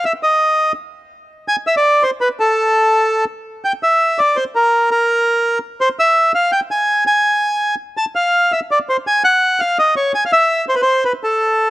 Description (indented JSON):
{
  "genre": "tango",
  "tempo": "167 BPM",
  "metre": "3/4",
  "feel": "rubato",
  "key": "unclear",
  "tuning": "A4 = 441 Hz",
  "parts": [
    { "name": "bandoneon", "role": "solo", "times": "0.0-11.7 s", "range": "A4 to A5", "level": "-13 LUFS", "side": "equal", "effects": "none" }
  ],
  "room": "studio ambience",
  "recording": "dry, close 1970s-style studio recording",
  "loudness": "-13 LUFS",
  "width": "side -16 dB against mid",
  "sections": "0.0-3.6 A section; 3.6-11.7 A section",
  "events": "none",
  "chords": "none"
}